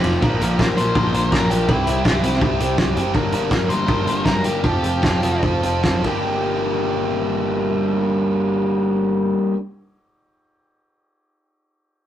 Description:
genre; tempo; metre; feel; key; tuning
indie rock; 138-166 BPM; 4/4; straight; G dorian; A4 = 440 Hz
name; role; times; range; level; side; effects
overdriven electric guitar; riff; 0.0-9.6 s; F2 to Bb4; -20 LUFS; equal; none
growling picked electric bass; bass; 0.0-9.3 s; F1 to C2; -26 LUFS; equal; overdrive
loose indie drum kit; drums; 0.0-6.1 s; hi-hat, kick drum, ride cymbal, snare drum; -20 LUFS; equal; none
octave-fuzz lead guitar; melody; 0.8-5.4 s; E4 to C5; -25 LUFS; left 2 dB; distortion
room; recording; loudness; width
moderate studio reverb, RT60 0.6 s; rough rehearsal-room recording; -17 LUFS; side -11 dB against mid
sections
0.2-6.3 A section; 6.3-9.7 B section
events
lead electric guitar solo 0.2-6.3; slowing down 3.1-6.3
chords
0.2 Bb; 1.7 C; 3.1 Gm; 4.6 Fadd9; 6.0 Gm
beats
| 0.22 0.58 0.95 1.31 | 1.68 2.04 2.41 2.77 | 3.14 3.50 3.88 4.25 | 4.63 5.03 5.42 5.84 | 6.26 6.70 7.13 7.56 | 8.00 8.43 8.86 9.29

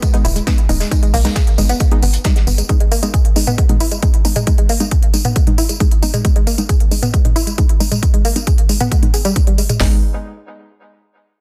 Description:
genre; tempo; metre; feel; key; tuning
driving peak-time techno; 135 BPM; 4/4; straight; G# harmonic minor; A4 = 440 Hz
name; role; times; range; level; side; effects
woody wave-folded pluck; riff; 0.0-10.0 s; G3 to G#4; -25 LUFS; equal; chorus, overdrive, sidechain pumping, delay
techno drum kit; drums; 0.0-9.9 s; hi-hat, kick drum, snare drum; -16 LUFS; equal; none
techno drum kit; drums; 0.0-9.8 s; hi-hat, tambourine, toms; -24 LUFS; equal; sidechain pumping on hats, sidechain pumping on perc, sidechain pumping on toms
vintage brush drum kit; drums; 0.0-2.6 s; hi-hat, snare drum, tambourine; -32 LUFS; equal; high-pass filter on hats, high-pass filter on snare, high-pass filter on perc, high-pass filter on room
filtered dub chord stab; stabs; 0.1-10.0 s; G#3 to D#4; -26 LUFS; equal; chorus, sidechain pumping, delay
tight sequencer bass; bass; 0.2-2.6, 9.8-10.0 s; D#1 to B1; -19 LUFS; equal; sidechain pumping
room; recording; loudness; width
little or no reverb; dense, heavily limited modern master; -15 LUFS; mono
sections
0.0-9.8 A section; 9.8-11.4 B section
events
filter sweep on synth arpeggio sound 0.0-9.8; filter sweep on synth stab 0.0-9.8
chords
0.0 G#m; 9.8 N.C.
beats
0.03 0.47 | 0.92 1.36 1.80 2.25 | 2.69 3.14 3.58 4.03 | 4.47 4.92 5.36 5.80 | 6.25 6.69 7.14 7.58 | 8.03 8.47 8.91 9.36 | 9.80

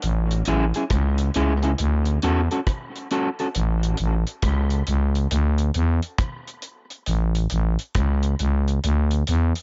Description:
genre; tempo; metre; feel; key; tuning
dub reggae; 68 BPM; 4/4; swing 64% on 16ths; A major; A4 = 440 Hz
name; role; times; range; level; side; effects
growling FM bass; bass; 0.0-9.5 s; A1 to E2; -22 LUFS; equal; none
deep reggae drum kit; drums; 0.0-9.6 s; hi-hat, kick drum, rim click; -30 LUFS; equal; none
electric guitar at the edge of break-up; accompaniment; 0.5-3.5 s; C#4 to A4; -29 LUFS; equal; dub echo
room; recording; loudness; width
little or no reverb; nothing above 7.6 kHz; -22 LUFS; mono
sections
0.0-9.6 A section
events
none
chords
0.0 Amaj7; 1.8 Dmaj7; 3.5 A; 5.3 Dsus2; 7.1 A; 8.8 Dsus2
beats
| 0.02 0.91 1.79 2.67 | 3.55 4.43 5.31 6.19 | 7.07 7.96 8.84

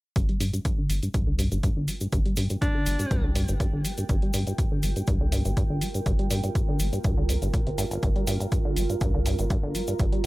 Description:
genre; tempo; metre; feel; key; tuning
acid house; 122 BPM; 4/4; straight; G minor; A4 = 440 Hz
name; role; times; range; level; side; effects
acid bass, saw; riff; 0.2-10.3 s; G1 to G3; -28 LUFS; equal; sidechain pumping, digital delay
round analog bass; bass; 0.2-10.1 s; G1 to C2; -28 LUFS; equal; sidechain pumping
electronic hi-hat; drums; 0.2-10.3 s; none; -37 LUFS; right 1 dB; none
electronic kick drum; drums; 0.2-10.1 s; none; -26 LUFS; equal; none
tube shaker; percussion; 0.2-10.1 s; none; -38 LUFS; left 3 dB; none
deep dark ambient pad; texture; 1.9-10.3 s; F4 to Bb5; -35 LUFS; right 4 dB; chorus, built-in reverb, sidechain pumping
clear alto saxophone; melody; 2.6-3.3 s; D4; -32 LUFS; equal; digital delay
room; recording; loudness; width
light reverb; none; -23 LUFS; side -19 dB against mid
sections
0.2-10.3 A section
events
filter sweep on acid bass 0.2-10.3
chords
0.2 Gm7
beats
| 0.16 0.65 1.14 1.63 | 2.13 2.62 3.11 3.60 | 4.09 4.58 5.08 5.57 | 6.06 6.55 7.04 7.54 | 8.03 8.52 9.01 9.50 | 9.99

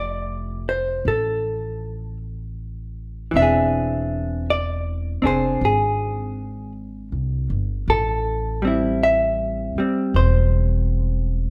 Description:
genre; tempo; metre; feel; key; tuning
jazz ballad; 53 BPM; 4/4; swing 66% on 8ths; unclear; A4 = 440 Hz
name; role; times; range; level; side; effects
vintage hollow-body jazz guitar; accompaniment; 0.0-11.5 s; E3 to E5; -24 LUFS; equal; none
upright bass; bass; 0.0-11.5 s; E1 to B#1; -26 LUFS; equal; none
room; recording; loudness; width
moderate large studio reverb, RT60 1.3 s; faint mains hum; -22 LUFS; mono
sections
0.0-11.5 A section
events
none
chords
0.0 Fmaj9; 3.3 E7b13; 7.9 Am7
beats
1.05 2.20 | 3.34 4.48 5.61 6.74 | 7.87 9.00 10.14 11.28

